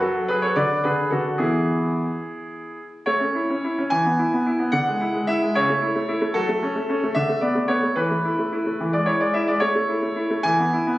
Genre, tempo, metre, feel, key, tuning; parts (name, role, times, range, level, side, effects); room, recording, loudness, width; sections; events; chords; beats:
classical-period piano sonatina; 73 BPM (dotted quarters); 6/8; straight; A major; A4 = 442 Hz
bright concert grand piano; solo; 0.0-11.0 s; C#3 to G#5; -20 LUFS; equal
wet recital hall reverb, RT60 1.6 s; recorded on a phone in the room, studio reverb; -20 LUFS; side -16 dB against mid
0.0-3.1 A section; 3.1-11.0 B section
0.0 F#m; 0.6 Bm/D; 1.4 E; 3.1 A; 3.9 E; 4.7 E7/D; 5.6 A/C#; 6.4 F#m; 7.2 Bm7/D; 8.0 Esus4; 8.8 E; 9.6 A; 10.5 E
0.55 | 1.39 2.24 | 3.07 3.92 | 4.74 5.56 | 6.36 7.17 | 7.99 8.81 | 9.63 10.48